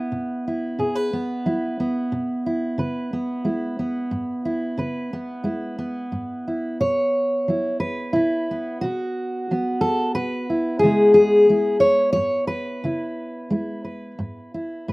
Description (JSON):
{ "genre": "folk, solo fingerstyle acoustic guitar", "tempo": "90 BPM", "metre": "3/4", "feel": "straight", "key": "C# minor", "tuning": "A4 = 440 Hz", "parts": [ { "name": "fingerpicked steel-string acoustic guitar", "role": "solo", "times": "0.0-14.9 s", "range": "G#2 to C#5", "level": "-20 LUFS", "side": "equal", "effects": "none" } ], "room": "little or no reverb", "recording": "recorded outdoors, with no room sound", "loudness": "-20 LUFS", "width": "side -22 dB against mid", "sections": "0.0-6.8 A section; 6.8-14.9 B section", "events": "none", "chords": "0.0 Bsus4; 2.8 C#m7; 6.8 Bsus4; 10.8 C#m7" }